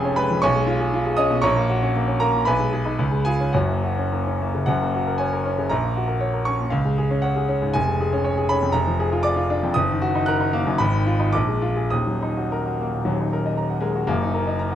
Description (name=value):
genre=classical, virtuoso piano study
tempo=99-123 BPM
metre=2/4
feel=rubato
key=F# major, Eb minor from 8.7 s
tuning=A4 = 440 Hz
part: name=clear grand piano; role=solo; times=0.0-14.8 s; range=Eb1 to Gb6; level=-19 LUFS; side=equal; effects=none
room=moderate recital hall reverb, RT60 1.6 s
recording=close, detailed microphones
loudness=-19 LUFS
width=side -10 dB against mid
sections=0.0-4.7 A section; 4.7-13.1 B section; 13.1-14.8 C section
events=none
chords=0.4 C#7/B; 1.4 F#/A#; 2.5 G#m/B; 3.0 C#7; 3.5 F#; 5.7 F#/A#; 6.7 C#; 7.7 C#/E#; 8.7 Bb7/F; 9.7 Ebm/Gb; 10.8 Fm7b5/Ab; 11.3 Bb7; 11.9 Ebm; 14.1 Ebm/Gb